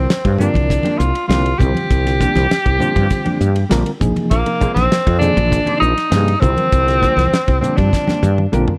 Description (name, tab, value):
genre	electric jazz fusion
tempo	100 BPM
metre	4/4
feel	straight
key	C minor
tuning	A4 = 440 Hz
part	breathy tenor saxophone	melody	0.0-8.5 s	Bb3 to G4	-21 LUFS	equal	tape echo
part	reed electric piano	accompaniment	0.0-8.7 s	C3 to C5	-25 LUFS	equal	fast tremolo
part	woody fretless electric bass	bass	0.0-8.6 s	Bb1 to G2	-19 LUFS	equal	none
part	damped 70s drum kit	drums	0.1-8.8 s	hi-hat, kick drum, ride cymbal, snare drum, toms	-22 LUFS	equal	none
part	mellow electric guitar	stabs	0.2-8.7 s	F3 to Ab4	-28 LUFS	equal	none
part	congas	percussion	0.4-8.2 s	none	-27 LUFS	equal	none
room	little or no reverb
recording	none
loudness	-15 LUFS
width	mono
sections	0.0-8.8 A section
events	drum fill 7.9-8.8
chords	0.0 C9sus4; 4.0 Bb9sus4; 6.4 C9sus4